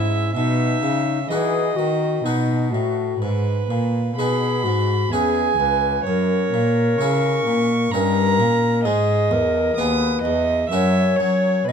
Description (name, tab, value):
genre	classical, baroque-style sonata movement with continuo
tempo	64 BPM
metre	3/4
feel	straight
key	unclear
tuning	A4 = 441 Hz
part	bright baroque flute	melody	0.0-11.7 s	D#4 to D#5	-23 LUFS	left 6 dB	none
part	rich violin	second line	0.0-11.7 s	B4 to D#6	-23 LUFS	right 6 dB	none
part	harpsichord	accompaniment	0.0-11.7 s	C#2 to B4	-25 LUFS	left 1 dB	none
part	rich cello	bass	0.0-11.7 s	C#2 to F#3	-22 LUFS	right 1 dB	none
room	light reverb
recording	dark, warm production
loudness	-17 LUFS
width	side -7 dB against mid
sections	0.0-11.7 A section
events	none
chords	0.4 B; 3.2 G#m; 5.1 C#m7/E; 6.1 F#7; 7.9 D#7/G; 8.9 G#m; 10.7 F#7